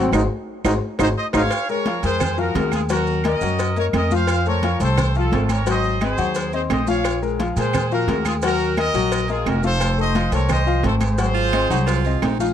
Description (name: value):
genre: latin, salsa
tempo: 174 BPM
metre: 4/4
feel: straight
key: Bb minor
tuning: A4 = 441 Hz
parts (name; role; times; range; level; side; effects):
- bright trombone; melody; 0.0-1.4 s; C4 to Eb4; -24 LUFS; right 3 dB; none
- clear concert grand piano; accompaniment; 0.0-12.5 s; F3 to Gb5; -24 LUFS; left 7 dB; none
- upright bass; bass; 0.0-12.5 s; F1 to Bb2; -22 LUFS; right 1 dB; none
- claves; percussion; 0.1-12.4 s; none; -31 LUFS; right 18 dB; none
- congas; percussion; 0.1-12.5 s; none; -27 LUFS; left 1 dB; none
- cowbell; percussion; 0.1-12.4 s; none; -30 LUFS; left 3 dB; none
- maracas; percussion; 0.1-12.5 s; none; -39 LUFS; right 15 dB; none
- timbales and agogo bells; percussion; 0.1-12.4 s; none; -30 LUFS; right 6 dB; none
- bright trumpet section; melody; 1.0-12.4 s; F4 to F5; -24 LUFS; right 1 dB; none
- breathy baritone saxophone; second line; 11.3-12.5 s; Eb4 to F4; -25 LUFS; right 16 dB; none
room: little or no reverb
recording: dry, close 1970s-style studio recording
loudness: -18 LUFS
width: side -9 dB against mid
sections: 0.0-1.5 A section; 1.5-12.5 B section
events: trombone solo 0.0-1.5; drum fill 0.1-1.5; band accent 0.1-1.5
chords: 0.1 Ab7; 1.5 Bbm7; 2.9 Ebm; 4.3 F; 5.7 Ab7; 7.0 Bb7(no3); 8.4 Ebm; 9.8 F7; 11.2 Ab7